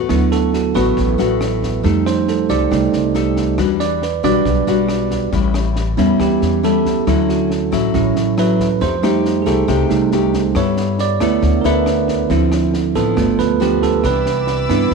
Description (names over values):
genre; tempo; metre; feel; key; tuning
bossa nova; 138 BPM; 4/4; straight; D major; A4 = 441 Hz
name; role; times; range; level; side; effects
nylon-string guitar; accompaniment; 0.0-14.9 s; G2 to A4; -20 LUFS; left 14 dB; none
upright bass; bass; 0.0-14.9 s; G1 to G2; -21 LUFS; left 1 dB; none
bell-like tine electric piano; accompaniment; 0.1-14.9 s; F3 to D5; -17 LUFS; right 11 dB; none
compact cocktail drum kit; drums; 0.1-14.9 s; kick drum, rim click, snare drum; -27 LUFS; left 2 dB; none
warm studio violin section; sustained chords; 14.0-14.9 s; D5 to E6; -26 LUFS; left 1 dB; none
room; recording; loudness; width
light reverb, small room ambience; 1960s-style stereo with parts hard left and right; -14 LUFS; side -4 dB against mid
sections
0.1-14.9 A section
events
tine electric piano solo 0.1-14.9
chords
0.1 D6; 1.8 F9; 3.6 Em9; 5.3 A7; 7.1 Dmaj9; 8.8 F9; 10.6 G69; 12.3 Dm9; 13.2 G7; 14.0 Cmaj9